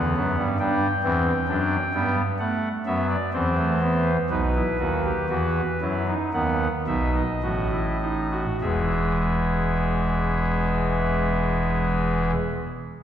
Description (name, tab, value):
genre	classical, baroque-style 3-part fugue for pipe organ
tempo	50-69 BPM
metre	4/4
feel	straight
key	unclear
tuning	A4 = 441 Hz
part	pipe organ, soft reed	solo	0.0-12.3 s	E1 to G5	-21 LUFS	equal	none
room	wet concert hall reverb, RT60 2.0 s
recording	heard from further back in the room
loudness	-21 LUFS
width	side -10 dB against mid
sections	0.0-8.6 A section; 8.6-13.0 B section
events	slowing down 0.0-8.6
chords	0.0 B5; 0.6 G; 2.4 F#dim; 4.3 B7; 8.6 E